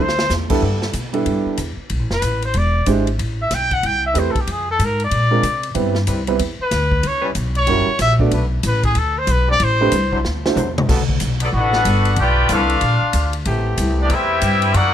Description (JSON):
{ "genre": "jazz, big band swing", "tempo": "187 BPM", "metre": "4/4", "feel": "swing 63% on 8ths", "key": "G major", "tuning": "A4 = 440 Hz", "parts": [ { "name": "warm trumpet", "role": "melody", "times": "0.0-10.3 s", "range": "G4 to G5", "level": "-19 LUFS", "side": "left 1 dB", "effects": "none" }, { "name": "upright bass", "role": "bass", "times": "0.0-14.9 s", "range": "E1 to C3", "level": "-19 LUFS", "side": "equal", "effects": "none" }, { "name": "swinging big-band drum kit", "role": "drums", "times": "0.1-14.8 s", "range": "crash cymbal, hi-hat, kick drum, ride cymbal, snare drum, toms", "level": "-25 LUFS", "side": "left 1 dB", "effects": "none" }, { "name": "warm grand piano", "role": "accompaniment", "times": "0.5-10.6 s", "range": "G3 to D5", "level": "-20 LUFS", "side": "right 5 dB", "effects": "none" }, { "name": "warm trombone section", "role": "sustained chords", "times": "0.5-0.9, 6.1-14.4 s", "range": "C3 to D5", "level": "-27 LUFS", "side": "left 2 dB", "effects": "none" }, { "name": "clear trumpet section", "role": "melody", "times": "11.4-14.9 s", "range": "B3 to G5", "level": "-18 LUFS", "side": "left 2 dB", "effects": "none" }, { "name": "muted trombone section", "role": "second line", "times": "11.4-14.9 s", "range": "F#3 to G4", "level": "-22 LUFS", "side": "equal", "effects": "none" } ], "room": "little or no reverb", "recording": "close, detailed microphones", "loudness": "-15 LUFS", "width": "side -10 dB against mid", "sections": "0.6-10.9 A section; 10.9-14.9 B section", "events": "drum fill 0.0, 10.2-10.9; trumpet solo 0.0-10.9", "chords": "0.0 Dsus2; 0.6 G69; 1.9 F; 2.5 E7alt; 3.2 Am9; 4.5 Fm; 5.1 Bb9; 5.7 Cmaj7; 7.0 C#m7b5; 7.7 F#7b9; 8.3 Bm7; 9.6 Am11; 10.2 D9; 10.9 Gmaj9; 12.2 Bm7b5; 12.8 Bb; 13.5 Am9" }